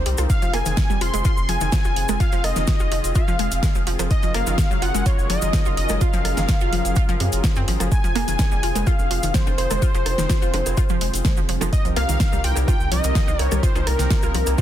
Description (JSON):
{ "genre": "progressive house", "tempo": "126 BPM", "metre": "4/4", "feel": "straight", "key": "F minor", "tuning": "A4 = 440 Hz", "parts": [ { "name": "wide unison lead", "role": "melody", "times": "0.0-14.6 s", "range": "Bb4 to C6", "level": "-26 LUFS", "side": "equal", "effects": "cassette tape, sidechain pumping, tape echo" }, { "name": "warm analog pad", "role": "sustained chords", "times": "0.0-14.6 s", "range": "C3 to Bb4", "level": "-31 LUFS", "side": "left 1 dB", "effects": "chorus, tremolo, sidechain pumping" }, { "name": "round analog bass", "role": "bass", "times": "0.0-14.5 s", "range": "F1 to Gb2", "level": "-24 LUFS", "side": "equal", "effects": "sidechain pumping" }, { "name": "analog pluck", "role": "arpeggios", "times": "0.1-14.6 s", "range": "C3 to F4", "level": "-28 LUFS", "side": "equal", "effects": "chorus, sidechain pumping, tape echo" }, { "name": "pop drum kit", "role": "drums", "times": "0.1-14.6 s", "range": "hi-hat, rim click, snare drum", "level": "-27 LUFS", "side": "equal", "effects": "soft clipping on snare" }, { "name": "cabasa", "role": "percussion", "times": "0.2-14.6 s", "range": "none", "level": "-33 LUFS", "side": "left 3 dB", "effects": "none" }, { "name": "electronic kick drum", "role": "drums", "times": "0.3-14.6 s", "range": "none", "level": "-20 LUFS", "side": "equal", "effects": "overdrive" }, { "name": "bongos, cowbell and congas", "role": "percussion", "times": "7.9-14.6 s", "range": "none", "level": "-33 LUFS", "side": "right 2 dB", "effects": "sidechain pumping on perc" } ], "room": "little or no reverb", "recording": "dense, heavily limited modern master", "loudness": "-18 LUFS", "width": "side -11 dB against mid", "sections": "0.0-14.6 A section", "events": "none", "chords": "0.3 Fm; 4.1 Gbmaj7; 7.9 Fm; 11.7 Cm7" }